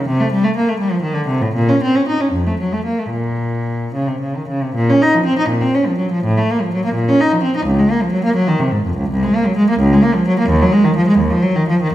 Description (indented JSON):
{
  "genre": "classical, baroque-style suite movement for unaccompanied cello",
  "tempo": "70-88 BPM (dotted quarters)",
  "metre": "6/8",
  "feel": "rubato",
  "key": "Bb minor",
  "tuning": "A4 = 440 Hz",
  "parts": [
    { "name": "rich cello", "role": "solo", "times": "0.0-11.9 s", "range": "C2 to Eb4", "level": "-13 LUFS", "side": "equal", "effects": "none" }
  ],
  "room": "wet recital hall reverb, RT60 1.4 s",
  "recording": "minimal, uncompressed stereo recording",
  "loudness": "-13 LUFS",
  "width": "side -13 dB against mid",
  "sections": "0.0-4.8 A section; 4.8-11.9 B section",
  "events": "none",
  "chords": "none",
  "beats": "| 0.08 0.78 | 1.53 2.30 | 3.11 3.94 | 4.76 5.50 | 6.25 6.96 | 7.66 8.36 | 9.10 9.79 | 10.49 11.19 | 11.94"
}